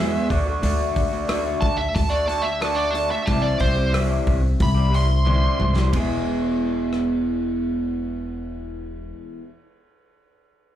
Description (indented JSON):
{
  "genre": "folk rock and heartland rock",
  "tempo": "90 BPM",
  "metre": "4/4",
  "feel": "straight",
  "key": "E mixolydian",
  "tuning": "A4 = 440 Hz",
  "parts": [
    { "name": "dark smooth lead guitar", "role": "melody", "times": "0.0-5.9 s", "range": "C5 to C6", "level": "-25 LUFS", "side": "right 2 dB", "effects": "overdrive, plate reverb, slapback echo" },
    { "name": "picked twelve-string acoustic guitar", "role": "accompaniment", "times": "0.0-9.5 s", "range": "E2 to G#4", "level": "-28 LUFS", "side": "left 8 dB", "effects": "plate reverb, slapback echo" },
    { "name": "mellow tonewheel organ", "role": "sustained chords", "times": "0.0-0.6 s", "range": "A4 to E6", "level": "-38 LUFS", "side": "right 1 dB", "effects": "none" },
    { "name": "electric guitar through a small old amp", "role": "riff", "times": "0.0-9.5 s", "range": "E2 to G#4", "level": "-26 LUFS", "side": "right 3 dB", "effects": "slapback echo" },
    { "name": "upright bass", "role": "bass", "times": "0.0-9.1 s", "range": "E1 to E2", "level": "-23 LUFS", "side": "equal", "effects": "none" },
    { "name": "loose indie drum kit", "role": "drums", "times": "0.3-7.1 s", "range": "hi-hat, kick drum, ride cymbal, rim click, snare drum, toms", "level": "-28 LUFS", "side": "equal", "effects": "none" }
  ],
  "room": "light reverb",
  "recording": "live gig heard through the venue's PA, club reverb",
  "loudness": "-19 LUFS",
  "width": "side -11 dB against mid",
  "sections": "0.0-5.9 A section; 5.9-8.6 B section",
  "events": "lead electric guitar solo 0.0-5.9; drum fill 5.3-5.9",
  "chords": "0.3 D; 3.3 C; 5.9 E"
}